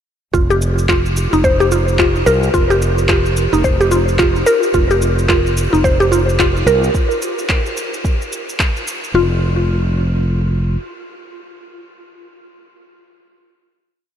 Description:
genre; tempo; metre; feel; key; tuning
organic downtempo; 109 BPM; 4/4; swing 60% on 16ths; unclear; A4 = 440 Hz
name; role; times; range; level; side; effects
mallet-like synth pluck; arpeggios; 0.3-9.4 s; Eb4 to C5; -16 LUFS; equal; chorus, analog delay
fretless electric bass; bass; 0.3-10.8 s; F1 to C2; -17 LUFS; equal; none
electronic kick drum; drums; 0.3-8.7 s; none; -18 LUFS; equal; none
electronic shaker and handclaps; drums; 0.3-9.1 s; none; -23 LUFS; equal; none
room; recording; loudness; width
moderate huge ambient reverb, RT60 8.1 s; dreamy mix soaked in reverb; -13 LUFS; side -9 dB against mid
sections
0.3-9.1 groove; 9.1-11.3 final note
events
none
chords
none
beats
| 0.34 0.89 1.44 1.99 | 2.54 3.09 3.64 4.19 | 4.74 5.29 5.84 6.39 | 6.95 7.50 8.04 8.60 | 9.15 9.70 10.25

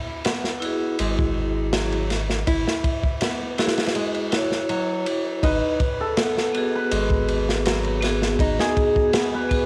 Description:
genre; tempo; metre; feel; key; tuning
trip hop; 81 BPM; 4/4; straight; G# phrygian; A4 = 440 Hz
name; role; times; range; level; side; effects
crunchy breakbeat drum kit; drums; 0.2-9.7 s; kick drum, ride cymbal, snare drum; -27 LUFS; equal; cassette tape
nylon-string guitar; arpeggios; 0.3-9.7 s; F#3 to E4; -31 LUFS; equal; analog delay
vibraphone with hard mallets; accompaniment; 0.6-9.7 s; B3 to C#5; -29 LUFS; equal; harmonic tremolo, vintage 12-bit sampler grit
soft dub sub bass; bass; 1.0-8.6 s; G#1; -29 LUFS; equal; none
cimbalom; melody; 5.4-9.7 s; G#4 to B4; -27 LUFS; equal; cassette tape
room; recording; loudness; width
light reverb, studio reverb; home recording on cassette; -23 LUFS; mono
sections
0.0-5.4 A section; 5.4-9.7 B section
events
filter sweep on nylon-string guitar 0.0-5.4; kick drops out 4.0-5.4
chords
0.0 Eadd9/G#; 5.4 G#m7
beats
0.25 0.99 1.73 | 2.47 3.21 3.95 4.69 | 5.43 6.17 6.92 7.66 | 8.40 9.14

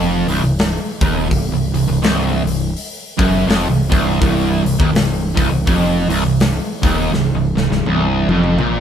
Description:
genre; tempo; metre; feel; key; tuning
stoner and doom metal; 82 BPM; 4/4; swing 59% on 8ths; C minor; A4 = 441 Hz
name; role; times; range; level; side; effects
fuzz guitar; riff; 0.0-8.8 s; C2 to Bb2; -16 LUFS; right 1 dB; distortion
growling picked electric bass; bass; 0.0-8.8 s; C1 to Bb1; -20 LUFS; equal; overdrive
big rock drum kit; drums; 0.3-8.8 s; hi-hat, kick drum, snare drum, toms; -19 LUFS; left 1 dB; none
room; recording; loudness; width
light reverb; band playing live in one room; -14 LUFS; side -8 dB against mid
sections
0.0-8.8 A section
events
drum fill 7.1-8.8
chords
0.0 Cm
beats
0.58 | 1.30 2.03 2.76 3.49 | 4.21 4.94 5.67 6.39 | 7.12 7.85 8.57

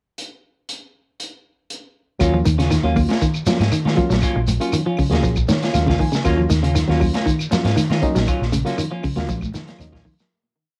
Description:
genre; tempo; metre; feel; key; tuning
afrobeat; 119 BPM; 4/4; straight; Eb minor; A4 = 440 Hz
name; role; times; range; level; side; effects
crunchy breakbeat drum kit; drums; 0.2-10.3 s; hi-hat, kick drum, snare drum; -26 LUFS; equal; cassette tape
barky reed electric piano; accompaniment; 2.2-10.0 s; Gb3 to Ab5; -26 LUFS; equal; overdrive
semi-hollow electric guitar; stabs; 2.2-10.1 s; Gb3 to F4; -29 LUFS; equal; none
vintage muted fingered electric bass; bass; 2.2-10.0 s; Bb1 to Eb3; -23 LUFS; equal; none
claves; percussion; 2.2-9.9 s; none; -38 LUFS; equal; none
shekere; percussion; 2.2-10.3 s; none; -30 LUFS; equal; none
clean electric guitar; arpeggios; 2.3-10.2 s; Bb2 to Bb3; -25 LUFS; equal; tape echo
congas; percussion; 2.5-10.3 s; none; -30 LUFS; equal; none
room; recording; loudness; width
light reverb; home recording on cassette; -19 LUFS; mono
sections
0.2-2.2 pickup bar; 2.2-10.3 groove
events
reed electric piano fill 5.2-6.3; fade-out 8.3-10.3; drum fill 9.3-10.3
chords
0.2 N.C.; 2.2 Ebm9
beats
| 0.18 0.68 1.19 1.70 | 2.21 2.71 3.22 3.72 | 4.23 4.74 5.24 5.75 | 6.25 6.76 7.26 7.77 | 8.27 8.78 9.29 9.79

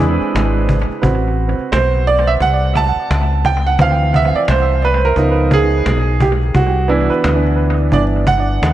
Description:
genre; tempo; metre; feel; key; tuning
hip hop, jazz-hop; 87 BPM; 4/4; swing 58% on 16ths; A dorian; A4 = 440 Hz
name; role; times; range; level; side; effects
clear upright piano; accompaniment; 0.0-8.7 s; E3 to A5; -15 LUFS; right 4 dB; analog delay
deep dub fingered electric bass; bass; 0.0-8.7 s; G1 to E2; -16 LUFS; left 1 dB; none
cajon; drums; 0.2-8.7 s; none; -21 LUFS; equal; vintage 12-bit sampler grit, analog delay
room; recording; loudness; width
light reverb, small room ambience; echo-heavy mix; -12 LUFS; side -13 dB against mid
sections
0.0-1.0 A section; 1.0-8.7 B section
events
upright piano solo 1.0-8.7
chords
0.0 E7b13; 1.0 Am69; 3.8 Dm7; 5.2 C#9; 6.5 Cmaj9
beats
0.34 | 1.03 1.72 2.41 3.10 | 3.79 4.48 5.17 5.86 | 6.55 7.24 7.93 8.62

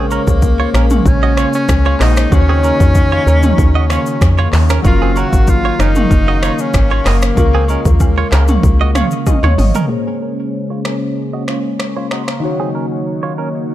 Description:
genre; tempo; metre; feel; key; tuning
afrobeats; 95 BPM; 4/4; straight; unclear; A4 = 440 Hz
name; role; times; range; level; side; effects
breathy tenor saxophone; melody; 0.0-9.1 s; Ab3 to Gb4; -19 LUFS; left 1 dB; ping-pong delay
warm analog keys; accompaniment; 0.0-13.7 s; Db3 to Db6; -22 LUFS; left 1 dB; chorus, low-pass filter
warm analog pad; sustained chords; 0.0-13.7 s; Db3 to F5; -21 LUFS; left 1 dB; chorus, low-pass filter
direct-recorded clean electric guitar; riff; 0.0-13.5 s; C4 to Eb5; -23 LUFS; right 8 dB; low-pass filter
woody FM bass; bass; 0.0-9.7 s; Gb1 to F2; -13 LUFS; equal; none
deep house drum kit; drums; 0.1-12.4 s; finger snaps, handclaps, hi-hat, kick drum, rim click, shaker, toms; -15 LUFS; equal; none
agogo bells and woodblock; percussion; 0.1-9.6 s; none; -28 LUFS; left 6 dB; none
room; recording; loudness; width
light reverb; dark, warm production; -11 LUFS; side -14 dB against mid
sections
0.0-9.9 A section; 9.9-13.7 B section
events
synth keys fill 8.6-9.9; drum fill 9.3-9.9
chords
0.0 Bbm9; 2.3 Ebm7; 4.8 Gbmaj7; 7.4 Db6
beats
0.42 1.06 1.69 | 2.32 2.95 3.58 4.21 | 4.85 5.48 6.11 6.74 | 7.37 8.00 8.63 9.27 | 9.90 10.53 11.16 11.79 | 12.43 13.06 13.69

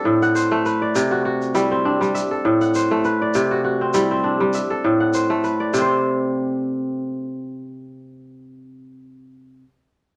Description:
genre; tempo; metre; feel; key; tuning
west african traditional, West African string and xylophone music; 100 BPM; 4/4; swing 55% on 16ths; C lydian; A4 = 440 Hz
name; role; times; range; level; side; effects
kora; arpeggios; 0.0-9.7 s; A2 to F#5; -20 LUFS; equal; none
tube shaker; percussion; 0.2-6.0 s; none; -37 LUFS; equal; none
room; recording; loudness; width
moderate studio reverb, RT60 0.8 s; none; -20 LUFS; mono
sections
0.0-5.7 A section; 5.7-8.1 B section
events
none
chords
0.0 Am; 0.9 C; 2.1 Am; 3.3 C; 4.5 Am; 5.7 Csus2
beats
0.35 | 0.95 1.55 2.15 2.74 | 3.34 3.94 4.54 5.13 | 5.73 6.33 6.93 7.52

